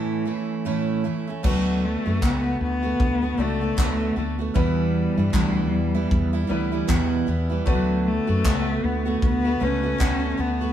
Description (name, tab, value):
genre	acoustic pop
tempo	77 BPM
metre	4/4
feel	swing 60% on 16ths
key	D major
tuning	A4 = 440 Hz
part	warm cello	melody	0.0-10.7 s	E3 to C#4	-25 LUFS	left 2 dB	none
part	picked steel-string acoustic guitar	accompaniment	0.0-10.7 s	E2 to F#4	-26 LUFS	right 4 dB	none
part	bright upright piano	accompaniment	1.4-10.7 s	G3 to D5	-33 LUFS	left 2 dB	none
part	mellow fretless electric bass	bass	1.4-10.7 s	C#2 to G2	-26 LUFS	equal	none
part	natural country drum kit	drums	1.4-10.2 s	crash cymbal, handclaps, kick drum	-24 LUFS	equal	none
room	moderate stone room reverb, RT60 0.9 s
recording	band playing live in one room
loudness	-20 LUFS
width	side -10 dB against mid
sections	0.0-1.4 A section; 1.4-10.7 B section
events	none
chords	0.0 A; 1.4 D6; 4.6 Em; 7.7 D6